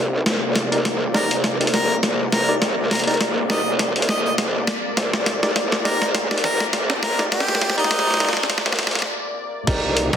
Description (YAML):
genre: glitch hop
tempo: 102 BPM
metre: 4/4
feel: swing 56% on 16ths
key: C minor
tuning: A4 = 440 Hz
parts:
  - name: warm analog pad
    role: sustained chords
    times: 0.0-10.2 s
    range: C3 to D5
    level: -29 LUFS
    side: left 2 dB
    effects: chorus, sidechain pumping
  - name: growl bass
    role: bass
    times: 0.0-10.1 s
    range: Bb1 to C2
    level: -24 LUFS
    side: equal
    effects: chorus, high-pass filter
  - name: boom bap sampler-style drum kit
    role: drums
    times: 0.3-10.2 s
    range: crash cymbal, hi-hat, snare drum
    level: -22 LUFS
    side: equal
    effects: none
  - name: barky tine electric piano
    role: stabs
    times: 0.7-10.2 s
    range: Eb4 to D5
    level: -26 LUFS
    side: equal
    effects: overdrive, vintage 12-bit sampler grit, sidechain pumping, low-pass filter, tape echo
  - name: warm harmonica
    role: melody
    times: 1.1-8.6 s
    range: Eb4 to Eb5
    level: -24 LUFS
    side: equal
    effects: tape echo
  - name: electronic kick drum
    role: drums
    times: 9.7-9.8 s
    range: none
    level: -23 LUFS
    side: equal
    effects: none
  - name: slap-like FM bass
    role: bass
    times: 10.1-10.2 s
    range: Bb1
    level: -19 LUFS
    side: equal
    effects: none
room: wet plate reverb, RT60 1.9 s, digital ambience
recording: dense, heavily limited modern master, high-pass filter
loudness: -18 LUFS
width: side -8 dB against mid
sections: 0.0-9.7 A section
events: build-up 0.0-9.7; drum fill 0.0-9.1; filter sweep on tine electric piano 0.0-9.7; filter sweep 0.0-9.7; break 9.1-9.7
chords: 0.0 Cm7